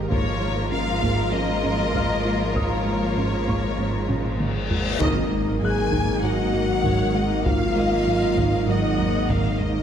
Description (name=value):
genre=cinematic, hybrid orchestral and electronic film score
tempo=98 BPM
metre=4/4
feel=straight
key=unclear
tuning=A4 = 440 Hz
part: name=rich symphonic violin section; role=second line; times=0.0-9.6 s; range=E#4 to G#5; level=-29 LUFS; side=left 4 dB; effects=none
part: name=warm symphonic viola section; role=accompaniment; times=0.0-9.8 s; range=D#3 to A#3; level=-31 LUFS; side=right 1 dB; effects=none
part: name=airy breathy pad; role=sustained chords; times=0.0-9.8 s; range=D#3 to A#4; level=-28 LUFS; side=right 2 dB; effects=chorus
part: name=rich symphonic cello section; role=bass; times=0.0-9.8 s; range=G#2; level=-31 LUFS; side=right 2 dB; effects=none
part: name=warm sub bass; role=bass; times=0.0-9.8 s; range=G#1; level=-31 LUFS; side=equal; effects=none
part: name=clear concert grand piano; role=texture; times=0.0-9.8 s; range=E#5 to F#6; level=-38 LUFS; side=left 2 dB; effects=ping-pong delay
part: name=rich symphonic violin section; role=melody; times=0.1-9.8 s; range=C#5 to F#5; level=-30 LUFS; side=left 4 dB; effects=none
part: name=tight sequenced synth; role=arpeggios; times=0.1-9.8 s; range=D#3 to E#4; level=-32 LUFS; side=right 3 dB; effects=none
part: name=round analog bass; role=riff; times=0.1-9.8 s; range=G#2 to G#3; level=-29 LUFS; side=right 2 dB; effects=none
part: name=solo taiko drums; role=drums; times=0.1-9.8 s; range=none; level=-30 LUFS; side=equal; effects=none
part: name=reverse cymbal and impact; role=sound effects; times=4.3-7.5 s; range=none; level=-32 LUFS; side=left 3 dB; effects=none
part: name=mellow French horn section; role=sustained chords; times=5.0-9.6 s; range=D#4 to G#4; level=-26 LUFS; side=left 1 dB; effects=none
part: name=rich symphonic double bass section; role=bass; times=5.0-9.8 s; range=G#1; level=-30 LUFS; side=right 3 dB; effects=none
room=wet scoring stage reverb, RT60 1.7 s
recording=none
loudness=-20 LUFS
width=side -8 dB against mid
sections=0.0-5.0 A section; 5.0-9.8 A section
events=drum fill 4.1-5.0; reverse cymbal 4.3-5.0; band accent 5.0-5.6; impact 5.0-7.5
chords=0.1 A#m/G#; 5.0 D#m/G#